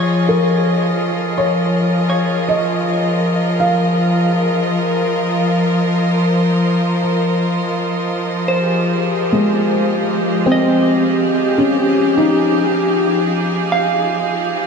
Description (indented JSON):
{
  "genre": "ambient",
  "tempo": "53 BPM",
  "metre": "4/4",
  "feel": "straight",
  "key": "F minor",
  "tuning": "A4 = 439 Hz",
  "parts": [
    { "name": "clear studio string section", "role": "sustained chords", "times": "0.0-14.7 s", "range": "F3 to Eb5", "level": "-16 LUFS", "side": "equal", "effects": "none" },
    { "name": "clean electric guitar", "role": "arpeggios", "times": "0.0-14.7 s", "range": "C5 to F5", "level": "-23 LUFS", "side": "right 2 dB", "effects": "diffuse ambient delay" },
    { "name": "felt-muted upright piano", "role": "melody", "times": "0.3-14.7 s", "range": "Ab3 to F5", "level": "-18 LUFS", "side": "equal", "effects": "diffuse ambient delay" },
    { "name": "rich chamber violin section", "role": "texture", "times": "8.2-14.7 s", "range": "F6", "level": "-38 LUFS", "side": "right 2 dB", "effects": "none" }
  ],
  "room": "wet cathedral reverb, RT60 6.0 s",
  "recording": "dark, warm production",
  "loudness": "-14 LUFS",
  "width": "side -5 dB against mid",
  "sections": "0.0-8.2 A section; 8.2-14.7 A section",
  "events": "none",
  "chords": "0.0 Db69/F; 3.7 Ab69/F; 8.2 Fm9",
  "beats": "0.30 1.42 2.53 | 3.65 4.77 5.89 7.05 | 8.20 9.35 10.48 11.61 | 12.74 13.87"
}